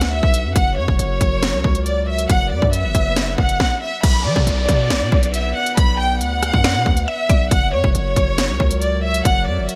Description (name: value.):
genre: hip hop, drill.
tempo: 138 BPM.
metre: 4/4.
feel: half-time.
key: B harmonic minor.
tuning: A4 = 438 Hz.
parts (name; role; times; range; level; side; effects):
rich studio violin section; melody; 0.0-9.8 s; C#5 to B5; -23 LUFS; equal; delay.
dark analog pad; sustained chords; 0.0-9.8 s; F#3 to F#5; -32 LUFS; equal; chorus.
hard-hitting 808-style bass; bass; 0.0-9.7 s; E1 to F#3; -23 LUFS; equal; none.
drill drum kit; drums; 0.0-9.8 s; crash cymbal, hi-hat, kick drum, rim click, snare drum; -20 LUFS; equal; gated reverb.
swell and downlifter; sound effects; 2.6-7.5 s; none; -34 LUFS; equal; none.
mallet-like synth pluck; second line; 6.6-7.5 s; D5 to E5; -32 LUFS; equal; chorus, delay.
room: little or no reverb.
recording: bright 1980s-style digital production.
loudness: -18 LUFS.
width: mono.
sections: 0.0-4.0 A section; 4.0-9.8 B section.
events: none.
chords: 0.0 Bm; 0.6 F#; 4.0 Bm; 7.5 F#.